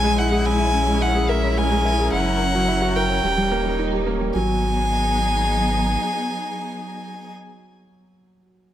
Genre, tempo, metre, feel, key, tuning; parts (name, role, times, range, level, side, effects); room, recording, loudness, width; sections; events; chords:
piano and strings electronica; 108 BPM; 4/4; straight; G# minor; A4 = 440 Hz
dark violin; melody; 0.0-7.3 s; E5 to G#5; -23 LUFS; left 1 dB
warm studio string section; sustained chords; 0.0-7.3 s; F#3 to A#4; -26 LUFS; equal
felt-muted upright piano; riff; 0.0-8.7 s; F#3 to C#5; -24 LUFS; right 1 dB
warm sub bass; bass; 0.0-6.0 s; D#1 to A#1; -24 LUFS; equal
moderate scoring stage reverb, RT60 1.6 s, small room ambience; -18 LUFS; side -11 dB against mid
0.0-4.3 A section; 4.3-6.6 B section
drop 0.0-4.3
0.0 A#m7b5; 2.1 F#7; 3.2 D#7; 4.3 G#m7